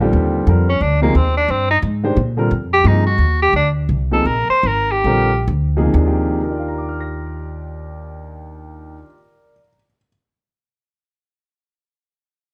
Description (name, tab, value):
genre	modal jazz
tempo	124-177 BPM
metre	4/4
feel	swing 62% on 8ths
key	Eb major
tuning	A4 = 439 Hz
part	warm grand piano	accompaniment	0.0-10.1 s	Eb2 to Bb6	-23 LUFS	equal	none
part	upright bass	bass	0.0-9.0 s	Ab1 to Bb2	-20 LUFS	equal	none
part	bright tenor saxophone	melody	0.7-5.5 s	Bb3 to C5	-19 LUFS	equal	none
room	light reverb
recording	none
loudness	-17 LUFS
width	mono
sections	0.1-5.9 A section; 5.9-9.8 B section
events	tenor saxophone solo 0.1-5.9; slowing down 2.8-5.9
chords	0.1 Ebmaj9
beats	| 0.13 0.47 0.81 1.15 | 1.48 1.82 2.16 2.50 | 2.84 3.18 3.53 3.88 | 4.25 4.64 5.05 5.48 | 5.95 6.43 6.92 7.40 | 7.89 8.37 8.86 9.34